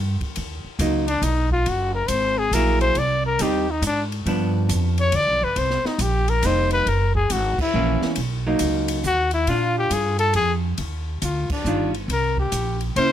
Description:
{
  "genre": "jazz, small-group swing and bop",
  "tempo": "138 BPM",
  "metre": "3/4",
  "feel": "swing 65% on 8ths",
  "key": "Eb major",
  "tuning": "A4 = 440 Hz",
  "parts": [
    { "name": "upright bass", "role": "bass", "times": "0.0-13.1 s", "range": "F1 to Bb2", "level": "-23 LUFS", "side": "right 1 dB", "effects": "none" },
    { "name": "open jazz drum kit", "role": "drums", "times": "0.2-13.1 s", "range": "crash cymbal, hi-hat, kick drum, ride cymbal, snare drum", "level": "-30 LUFS", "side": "left 1 dB", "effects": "none" },
    { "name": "vintage hollow-body jazz guitar", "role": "accompaniment", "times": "0.8-13.1 s", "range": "Eb3 to Ab4", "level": "-24 LUFS", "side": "right 2 dB", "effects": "none" },
    { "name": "clear trumpet", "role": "melody", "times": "1.1-13.1 s", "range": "D4 to D5", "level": "-22 LUFS", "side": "left 3 dB", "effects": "plate reverb" }
  ],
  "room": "light reverb",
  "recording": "close, detailed microphones",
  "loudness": "-19 LUFS",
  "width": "side -10 dB against mid",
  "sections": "0.4-10.8 A section; 10.8-13.1 B section",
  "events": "band accent 7.5, 11.4",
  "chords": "0.4 Bmaj7; 1.7 Gb9; 3.0 Abmaj7; 4.3 G7; 5.6 Cm7; 6.9 Gb7; 8.2 Bmaj7; 9.5 Bb; 10.8 Ebmaj9; 12.1 C7b9"
}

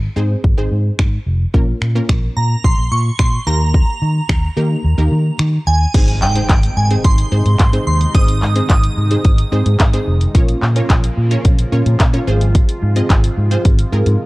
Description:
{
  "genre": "dance-pop",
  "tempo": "109 BPM",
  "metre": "4/4",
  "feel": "straight",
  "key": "Ab major",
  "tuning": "A4 = 438 Hz",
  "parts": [
    { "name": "vintage muted fingered electric bass", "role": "bass", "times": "0.0-14.2 s", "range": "F1 to Eb3", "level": "-15 LUFS", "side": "equal", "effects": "sidechain pumping" },
    { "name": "wide unison pluck", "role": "accompaniment", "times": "0.2-14.2 s", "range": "Bb3 to Eb5", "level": "-23 LUFS", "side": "equal", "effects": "sidechain pumping" },
    { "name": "house drum kit", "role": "drums", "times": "0.4-14.2 s", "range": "crash cymbal, finger snaps, handclaps, hi-hat, kick drum", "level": "-14 LUFS", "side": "equal", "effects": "none" },
    { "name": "shimmering bell with halo", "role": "melody", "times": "2.4-10.0 s", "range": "G5 to Eb6", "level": "-22 LUFS", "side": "right 2 dB", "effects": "ensemble chorus, tape echo" },
    { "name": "filtered supersaw swell", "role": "sustained chords", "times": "5.9-14.3 s", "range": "C3 to F4", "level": "-27 LUFS", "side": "right 1 dB", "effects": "sidechain pumping" },
    { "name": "impact", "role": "sound effects", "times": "5.9-8.1 s", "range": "none", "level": "-28 LUFS", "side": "equal", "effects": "none" }
  ],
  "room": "little or no reverb",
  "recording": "dry, gritty hardware recording, transformer saturation, cassette tape",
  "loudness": "-12 LUFS",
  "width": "side -21 dB against mid",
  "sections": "0.0-5.9 A section; 5.9-14.3 B section",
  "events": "kick muted 4.8-5.9; impact 5.9-8.1",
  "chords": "0.0 Ab; 1.5 Bbm; 3.5 Eb; 5.9 Ab; 10.3 Bbm; 12.3 Fm/Ab"
}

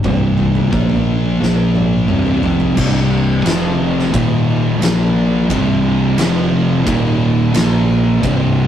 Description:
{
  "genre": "stoner and doom metal",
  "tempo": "88 BPM",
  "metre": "4/4",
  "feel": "straight",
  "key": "C minor",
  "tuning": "A4 = 440 Hz",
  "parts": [
    { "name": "thick fuzz guitar", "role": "riff", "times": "0.0-8.7 s", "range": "C2 to Bb3", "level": "-16 LUFS", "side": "left 1 dB", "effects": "distortion" },
    { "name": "thick fuzz guitar", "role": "riff", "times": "0.0-8.7 s", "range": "C2 to Bb3", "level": "-21 LUFS", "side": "right 2 dB", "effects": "distortion" },
    { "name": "modern bright fingered electric bass", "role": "bass", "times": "0.0-8.7 s", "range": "C1 to Bb1", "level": "-21 LUFS", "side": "right 1 dB", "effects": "tube saturation" },
    { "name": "oversized low-tuned drum kit", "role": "drums", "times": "0.0-8.4 s", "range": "crash cymbal, kick drum, ride cymbal, snare drum, toms", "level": "-20 LUFS", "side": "equal", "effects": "none" },
    { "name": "fuzz guitar", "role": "riff", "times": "2.7-8.7 s", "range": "C2 to Bb3", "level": "-21 LUFS", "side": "right 2 dB", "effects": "distortion" }
  ],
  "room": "moderate stone room reverb, RT60 1.1 s",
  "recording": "rough rehearsal-room recording, warm saturation",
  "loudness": "-12 LUFS",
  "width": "side -10 dB against mid",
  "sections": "0.0-2.8 A section; 2.8-8.7 B section",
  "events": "drum fill 1.4-2.8",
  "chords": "0.0 C5; 0.7 Bb5; 2.1 C5; 3.5 F5; 4.1 Eb5; 4.8 Bb5; 5.5 C5; 6.2 F5; 6.9 Eb5; 7.5 Bb5"
}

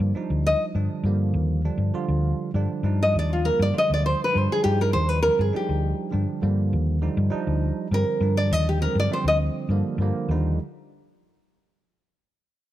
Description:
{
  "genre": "jazz",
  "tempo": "67 BPM (dotted quarters)",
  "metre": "6/8",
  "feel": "straight",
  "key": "Eb major",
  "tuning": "A4 = 442 Hz",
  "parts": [
    { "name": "nylon-string guitar", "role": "melody", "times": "0.0-9.4 s", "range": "F4 to Eb5", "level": "-23 LUFS", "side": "equal", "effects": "slapback echo" },
    { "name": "bell-like tine electric piano", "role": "accompaniment", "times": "0.0-10.6 s", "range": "D3 to F4", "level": "-28 LUFS", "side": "right 4 dB", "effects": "analog chorus" },
    { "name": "hollow-body short-scale fingered electric bass", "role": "bass", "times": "0.0-10.6 s", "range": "D2 to G2", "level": "-23 LUFS", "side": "left 1 dB", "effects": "none" }
  ],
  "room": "small room ambience",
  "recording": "none",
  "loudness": "-21 LUFS",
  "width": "side -13 dB against mid",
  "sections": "0.0-10.3 A section; 10.3-12.1 B section",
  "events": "nylon-string guitar solo 0.0-10.3",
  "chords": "0.0 Ebmaj9"
}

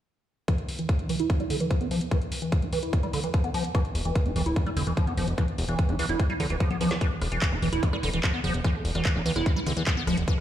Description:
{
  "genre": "psychedelic trance",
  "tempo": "147 BPM",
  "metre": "4/4",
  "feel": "straight",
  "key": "E phrygian",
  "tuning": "A4 = 437 Hz",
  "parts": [
    { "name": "liquid acid bass", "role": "riff", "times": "0.5-10.3 s", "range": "D3 to E4", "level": "-28 LUFS", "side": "right 1 dB", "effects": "phaser, auto-pan, sidechain pumping, digital delay" },
    { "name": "drum and bass drum kit", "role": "drums", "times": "0.5-10.4 s", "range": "handclaps, hi-hat, rim click, snare drum, toms", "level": "-34 LUFS", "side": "left 1 dB", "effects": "none" },
    { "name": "electronic kick drum", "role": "drums", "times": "0.5-10.4 s", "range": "none", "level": "-25 LUFS", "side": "equal", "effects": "none" },
    { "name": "fat analog bass", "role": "bass", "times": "4.0-10.2 s", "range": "D1 to E2", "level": "-28 LUFS", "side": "equal", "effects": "none" },
    { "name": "resonant blip pluck", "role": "second line", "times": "7.9-10.4 s", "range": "E3 to B3", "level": "-43 LUFS", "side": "right 4 dB", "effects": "none" }
  ],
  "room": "light reverb",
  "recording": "played on a big sound system in a bare room, large studio reverb",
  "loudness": "-24 LUFS",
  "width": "side -11 dB against mid",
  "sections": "0.5-7.0 A section; 7.0-10.4 B section",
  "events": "filter sweep on acid bass 0.5-7.0; drum fill 6.6-7.0",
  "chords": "0.5 E5"
}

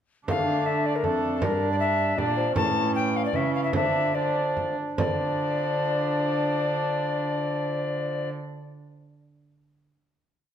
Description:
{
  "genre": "classical, renaissance-style consort dance",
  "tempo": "140-158 BPM",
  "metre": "3/4",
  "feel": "straight",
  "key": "D harmonic minor",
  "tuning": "A4 = 440 Hz",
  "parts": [
    { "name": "tenor recorder", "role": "melody", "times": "0.3-8.3 s", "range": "A4 to A5", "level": "-28 LUFS", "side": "left 5 dB", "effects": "none" },
    { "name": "warm viola", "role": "second line", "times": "0.3-8.3 s", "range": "C#4 to D4", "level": "-29 LUFS", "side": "right 4 dB", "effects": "none" },
    { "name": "mellow bassoon", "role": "accompaniment", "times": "0.3-8.3 s", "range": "E3 to A3", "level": "-30 LUFS", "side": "left 1 dB", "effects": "none" },
    { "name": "warm cello", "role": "bass", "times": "0.3-8.3 s", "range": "F2 to D3", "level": "-31 LUFS", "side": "right 2 dB", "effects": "none" },
    { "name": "frame drum", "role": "percussion", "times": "0.3-5.2 s", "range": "none", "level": "-31 LUFS", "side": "right 3 dB", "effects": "none" }
  ],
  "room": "wet recital hall reverb, RT60 1.4 s",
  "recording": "minimal, uncompressed stereo recording",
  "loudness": "-23 LUFS",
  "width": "side -9 dB against mid",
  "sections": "0.3-5.0 A section; 5.0-7.5 final chord",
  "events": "slowing down 2.0-5.0",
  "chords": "0.3 Dm; 1.4 Gm; 2.6 A; 3.7 Dm"
}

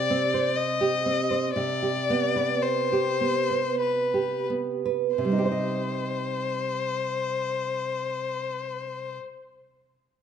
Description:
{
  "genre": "romantic duo for violin and classical guitar",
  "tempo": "41-66 BPM",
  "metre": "3/4",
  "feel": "rubato",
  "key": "C minor",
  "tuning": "A4 = 440 Hz",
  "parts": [
    { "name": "rich violin", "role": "melody", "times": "0.0-9.2 s", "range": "B4 to Eb5", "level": "-27 LUFS", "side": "left 5 dB", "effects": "none" },
    { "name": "nylon-string guitar", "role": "accompaniment", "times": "0.0-9.5 s", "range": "C3 to Eb5", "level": "-27 LUFS", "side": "right 5 dB", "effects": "none" }
  ],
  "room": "moderate recital hall reverb, RT60 1.6 s",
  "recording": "dark, warm production, nothing above 11.0 kHz",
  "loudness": "-24 LUFS",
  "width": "side -8 dB against mid",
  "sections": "0.0-5.2 A section; 5.2-9.0 B section",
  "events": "slowing down 0.0-5.2",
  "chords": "0.0 Cm; 1.6 G/C; 5.2 Cm"
}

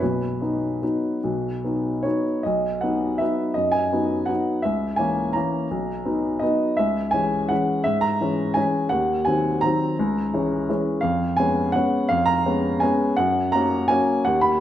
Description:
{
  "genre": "classical, piano waltz",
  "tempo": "143-179 BPM",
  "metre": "3/4",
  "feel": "rubato",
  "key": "B major, F# major from 11.0 s",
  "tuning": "A4 = 440 Hz",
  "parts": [
    { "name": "warm upright piano", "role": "solo", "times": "0.0-14.6 s", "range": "B1 to B5", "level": "-20 LUFS", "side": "equal", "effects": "none" }
  ],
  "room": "wet recital hall reverb, RT60 1.4 s",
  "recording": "none",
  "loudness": "-20 LUFS",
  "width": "side -11 dB against mid",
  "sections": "0.0-2.5 A section; 2.5-14.6 B section",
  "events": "none",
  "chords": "0.0 B; 4.7 A#dim/C#; 5.7 B; 6.8 C#m; 8.9 Cdim/Eb; 10.0 C#m; 11.0 C#7/E#; 13.2 F#"
}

